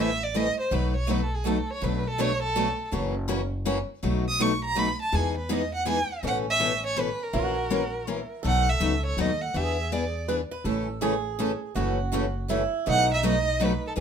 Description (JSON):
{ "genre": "acoustic string swing (jazz manouche)", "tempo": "163 BPM", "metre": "3/4", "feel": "swing 63% on 8ths", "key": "E major, A major from 6.2 s", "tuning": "A4 = 442 Hz", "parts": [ { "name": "warm violin", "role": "melody", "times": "0.0-10.3, 12.9-13.9 s", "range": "G#4 to D#6", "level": "-27 LUFS", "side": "right 2 dB", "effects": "none" }, { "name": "picked steel-string acoustic guitar", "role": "accompaniment", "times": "0.0-14.0 s", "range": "B2 to B4", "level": "-29 LUFS", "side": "left 6 dB", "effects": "none" }, { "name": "picked steel-string acoustic guitar", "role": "accompaniment", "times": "0.0-6.0, 10.7-14.0 s", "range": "B2 to B4", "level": "-31 LUFS", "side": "right 7 dB", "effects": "none" }, { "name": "upright bass", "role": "bass", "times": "0.0-14.0 s", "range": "F#1 to E2", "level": "-30 LUFS", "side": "equal", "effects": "none" }, { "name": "picked swing-style acoustic guitar", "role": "second line", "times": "6.2-14.0 s", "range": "C#4 to B4", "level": "-32 LUFS", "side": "right 6 dB", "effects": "none" } ], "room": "moderate studio reverb, RT60 0.6 s", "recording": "minimal, uncompressed stereo recording", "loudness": "-24 LUFS", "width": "side -7 dB against mid", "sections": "0.0-6.2 A section; 6.2-14.0 B section", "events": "violin solo 0.0-6.2", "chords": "0.0 Amadd9; 0.7 B7; 1.8 Bm7; 2.9 F#7; 4.0 B7; 5.1 Emaj7; 6.2 Aadd9; 7.3 F#7/A#; 8.4 B7; 9.6 E7; 10.7 A; 11.8 F#m7; 12.9 B7" }